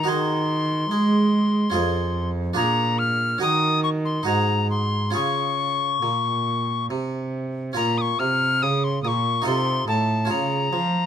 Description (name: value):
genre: classical, baroque-style sonata movement with continuo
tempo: 71 BPM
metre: 3/4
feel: straight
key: Db major, Bb minor from 7.8 s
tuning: A4 = 440 Hz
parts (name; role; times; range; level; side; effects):
- bright soprano recorder; melody; 0.0-11.1 s; A5 to F6; -23 LUFS; left 4 dB; none
- harpsichord; accompaniment; 0.0-11.1 s; F2 to Bb4; -27 LUFS; right 3 dB; none
- dark cello; bass; 0.0-11.1 s; F2 to Ab3; -24 LUFS; right 1 dB; none
room: light reverb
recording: close, detailed microphones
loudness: -20 LUFS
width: side -9 dB against mid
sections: 0.0-7.8 A section; 7.8-11.1 A section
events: none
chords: 0.1 Ab7/Eb; 1.8 Db/F; 2.6 Bb7; 3.4 Ebm7; 4.3 Ab7; 5.2 Db; 7.8 Bbm; 9.5 F7/C; 10.3 Bbm/Db